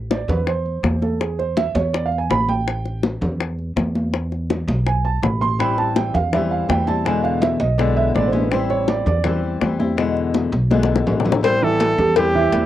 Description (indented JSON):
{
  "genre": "latin, Cuban son and guajira",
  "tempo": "164 BPM",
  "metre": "4/4",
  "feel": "straight",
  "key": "A minor",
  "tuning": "A4 = 442 Hz",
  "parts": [
    { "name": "upright bass", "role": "bass", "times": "0.0-12.7 s", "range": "A1 to E2", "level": "-23 LUFS", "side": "equal", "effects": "none" },
    { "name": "dark concert grand piano", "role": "arpeggios", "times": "0.1-12.7 s", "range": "E3 to C6", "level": "-22 LUFS", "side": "right 6 dB", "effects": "cassette tape" },
    { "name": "bongos and cowbell", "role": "percussion", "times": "0.1-12.7 s", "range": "none", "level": "-23 LUFS", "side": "left 7 dB", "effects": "none" },
    { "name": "congas", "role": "percussion", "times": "0.1-12.7 s", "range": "none", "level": "-24 LUFS", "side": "equal", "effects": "none" },
    { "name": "flamenco guitar", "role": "accompaniment", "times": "5.6-12.7 s", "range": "B2 to E4", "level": "-22 LUFS", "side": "left 5 dB", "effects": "cassette tape" },
    { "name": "breathy trumpet", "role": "melody", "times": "11.4-12.7 s", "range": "G4 to C5", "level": "-18 LUFS", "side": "equal", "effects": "none" }
  ],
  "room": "moderate booth ambience, RT60 0.2 s",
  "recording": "home recording on cassette",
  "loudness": "-17 LUFS",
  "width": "side -12 dB against mid",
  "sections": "0.0-11.4 A section; 11.4-12.7 B section",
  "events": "grand piano solo 0.0-11.4; drum fill 10.5-11.4",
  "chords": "0.0 A5; 4.1 E5; 5.6 Am7; 7.1 E7; 8.5 Am7; 10.0 E7; 11.4 Am7",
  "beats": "0.10 0.47 0.84 | 1.21 1.57 1.94 2.31 | 2.67 3.04 3.40 3.77 | 4.13 4.50 4.87 5.23 | 5.60 5.96 6.33 6.69 | 7.06 7.42 7.79 8.15 | 8.52 8.88 9.25 9.61 | 9.98 10.34 10.71 11.07 | 11.44 11.80 12.16 12.53"
}